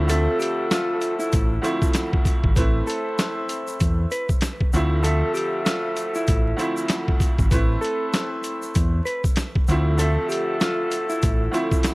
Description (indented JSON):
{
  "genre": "hip hop, boom-bap hip-hop",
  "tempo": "97 BPM",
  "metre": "4/4",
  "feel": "swing 60% on 16ths",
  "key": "unclear",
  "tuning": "A4 = 442 Hz",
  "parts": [
    { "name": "bright upright piano", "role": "accompaniment", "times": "0.0-11.9 s", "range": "D2 to E5", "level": "-27 LUFS", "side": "right 1 dB", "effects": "high-pass filter, low-pass filter" },
    { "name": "mellow horn section", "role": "stabs", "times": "0.0-11.9 s", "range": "F3 to C5", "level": "-29 LUFS", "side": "left 1 dB", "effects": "high-pass filter, low-pass filter" },
    { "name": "deep dub fingered electric bass", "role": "bass", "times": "0.0-11.5 s", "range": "G#1 to E2", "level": "-21 LUFS", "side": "equal", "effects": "transformer saturation" },
    { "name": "mellow electric guitar", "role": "melody", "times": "0.1-11.9 s", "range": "E4 to B4", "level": "-28 LUFS", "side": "equal", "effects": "vibrato effect, high-pass filter, low-pass filter" },
    { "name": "boom bap sampler-style drum kit", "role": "drums", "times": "0.1-11.9 s", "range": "hi-hat, kick drum, snare drum", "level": "-22 LUFS", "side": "equal", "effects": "none" },
    { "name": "egg shaker", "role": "percussion", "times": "0.1-11.9 s", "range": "none", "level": "-39 LUFS", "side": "left 2 dB", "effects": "none" }
  ],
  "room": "little or no reverb",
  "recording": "dry, gritty hardware recording, vinyl crackle",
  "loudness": "-20 LUFS",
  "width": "side -22 dB against mid",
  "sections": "0.0-11.9 A section",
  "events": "none",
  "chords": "0.0 Dm9; 2.6 Amadd9; 4.7 Dm9; 7.5 Amadd9; 9.7 Dm9"
}